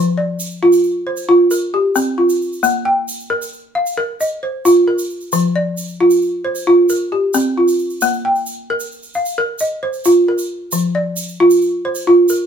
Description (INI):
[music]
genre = west african traditional, West African string and xylophone music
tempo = 89 BPM (dotted quarters)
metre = 12/8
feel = straight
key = unclear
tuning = A4 = 440 Hz
[part]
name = balafon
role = arpeggios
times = 0.0-12.5 s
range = F3 to G5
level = -13 LUFS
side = equal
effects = none
[part]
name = egg shaker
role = percussion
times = 0.4-12.4 s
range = none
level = -27 LUFS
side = right 4 dB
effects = none
[sound]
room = moderate large studio reverb, RT60 0.9 s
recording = band playing live in one room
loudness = -14 LUFS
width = side -8 dB against mid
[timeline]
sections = 0.0-10.7 A section; 10.7-12.5 B section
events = none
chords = 0.0 F5; 2.6 Bb5; 5.3 F5; 8.0 Bb5; 10.7 F5